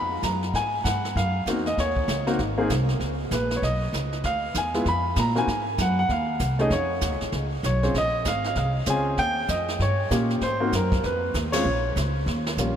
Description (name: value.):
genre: jazz piano trio.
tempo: 194 BPM.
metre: 4/4.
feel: swing 62% on 8ths.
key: Ab mixolydian.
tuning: A4 = 440 Hz.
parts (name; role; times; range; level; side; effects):
warm baby grand piano; melody; 0.0-12.8 s; G3 to Cb6; -25 LUFS; equal; none.
upright bass; bass; 0.0-12.8 s; Ab1 to Bb2; -26 LUFS; equal; none.
jazz brush drum kit; drums; 0.2-12.8 s; brushed snare drum, hi-hat, kick drum, ride cymbal, snare drum; -31 LUFS; right 1 dB; none.
room: moderate cathedral reverb, RT60 5.7 s.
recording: in a vast, echoing space.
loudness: -22 LUFS.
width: side -9 dB against mid.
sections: 0.0-12.8 A section.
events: band accent 11.5; drum fill 12.3-12.6.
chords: 0.0 Db7 (rootless); 0.5 Ab7(no3); 1.8 Eb7(no3); 2.4 Ab; 3.0 Bbmadd11; 4.2 Ddim7; 5.5 Ab7; 6.7 F(#5, no3); 7.9 Bbm7; 9.2 Eb7; 10.4 Ab7; 11.0 F7(no3); 11.7 Bbm.